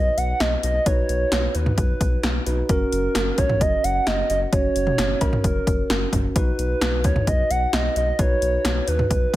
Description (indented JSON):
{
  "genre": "synth-pop",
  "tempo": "131 BPM",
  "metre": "4/4",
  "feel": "straight",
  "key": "unclear",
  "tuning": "A4 = 440 Hz",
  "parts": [
    { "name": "hollow clarinet-like synth lead", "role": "melody", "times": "0.0-9.4 s", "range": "A#4 to F#5", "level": "-24 LUFS", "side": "right 1 dB", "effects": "chorus" },
    { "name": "tine electric piano", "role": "accompaniment", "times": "0.0-9.4 s", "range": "C#4 to C#5", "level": "-29 LUFS", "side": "right 2 dB", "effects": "none" },
    { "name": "round analog bass", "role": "bass", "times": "0.0-9.4 s", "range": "F#1 to D#2", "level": "-25 LUFS", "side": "equal", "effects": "none" },
    { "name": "punchy analog drum machine", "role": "drums", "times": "0.2-9.4 s", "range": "cowbell, hi-hat, kick drum, snare drum, toms", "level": "-22 LUFS", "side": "equal", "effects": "overdrive, gated reverb" }
  ],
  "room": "light reverb, digital ambience",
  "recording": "none",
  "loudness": "-19 LUFS",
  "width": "side -15 dB against mid",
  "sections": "0.0-9.4 A section",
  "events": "none",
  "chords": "0.0 B; 2.7 F#; 6.4 B"
}